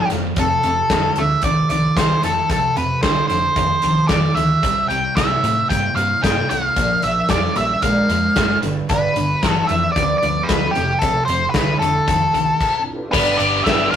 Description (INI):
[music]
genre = classic rock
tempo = 113 BPM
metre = 4/4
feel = straight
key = unclear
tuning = A4 = 441 Hz
[part]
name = octave-fuzz lead guitar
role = melody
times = 0.0-14.0 s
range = G4 to G5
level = -19 LUFS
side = equal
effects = distortion
[part]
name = picked acoustic archtop guitar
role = accompaniment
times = 0.0-14.0 s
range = G2 to C5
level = -30 LUFS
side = right 2 dB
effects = none
[part]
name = crunchy overdriven guitar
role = riff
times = 0.0-14.0 s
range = F2 to G4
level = -24 LUFS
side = left 5 dB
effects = phaser
[part]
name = tight distorted guitar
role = riff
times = 0.0-14.0 s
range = F2 to G4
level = -24 LUFS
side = right 5 dB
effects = distortion
[part]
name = hollow-body short-scale fingered electric bass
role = bass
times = 0.1-14.0 s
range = E1 to A2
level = -27 LUFS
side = equal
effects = none
[part]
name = big rock drum kit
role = drums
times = 0.1-14.0 s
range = crash cymbal, hi-hat, kick drum, ride cymbal, snare drum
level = -22 LUFS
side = left 1 dB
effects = none
[part]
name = mellow tonewheel organ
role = sustained chords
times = 12.8-14.0 s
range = B3 to F5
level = -30 LUFS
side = equal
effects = none
[part]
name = warm upright piano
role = accompaniment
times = 13.1-14.0 s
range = D4 to E5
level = -27 LUFS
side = left 4 dB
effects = none
[part]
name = cowbell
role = percussion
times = 13.1-13.8 s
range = none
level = -29 LUFS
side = right 1 dB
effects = none
[sound]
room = moderate studio reverb, RT60 0.6 s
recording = rough rehearsal-room recording, tube saturation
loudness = -15 LUFS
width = side -9 dB against mid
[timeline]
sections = 0.0-13.1 A section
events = stop 12.6-13.1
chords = 0.4 F; 4.6 C; 6.8 Bb; 8.6 G; 10.7 F; 13.1 G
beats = | 0.37 0.90 1.43 1.97 | 2.50 3.03 3.56 4.10 | 4.63 5.16 5.70 6.23 | 6.76 7.29 7.83 8.36 | 8.89 9.42 9.95 10.48 | 11.01 11.54 12.07 12.60 | 13.13 13.66